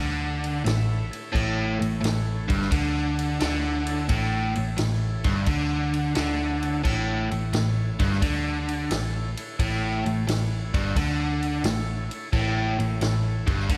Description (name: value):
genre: blues rock power trio and southern rock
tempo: 87 BPM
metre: 4/4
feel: swing 68% on 8ths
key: A mixolydian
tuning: A4 = 440 Hz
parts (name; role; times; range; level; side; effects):
- overdriven tonewheel organ; sustained chords; 0.0-13.6 s; E4 to A5; -41 LUFS; equal; slow rotary speaker
- biting overdriven guitar; riff; 0.0-13.8 s; G2 to D3; -29 LUFS; equal; none
- vintage muted picked electric bass; bass; 0.0-13.8 s; G1 to D2; -30 LUFS; equal; none
- vintage drum kit; drums; 0.4-13.8 s; crash cymbal, kick drum, ride cymbal, snare drum; -32 LUFS; equal; none
room: moderate scoring stage reverb, RT60 1.8 s, small room ambience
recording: big arena sound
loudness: -25 LUFS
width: mono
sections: 0.0-13.8 A section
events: tonewheel organ fill 0.0-1.3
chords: 0.0 A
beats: 0.66 | 1.34 2.03 2.72 3.41 | 4.09 4.78 5.47 6.16 | 6.84 7.53 8.22 8.90 | 9.59 10.28 10.96 11.65 | 12.33 13.02 13.70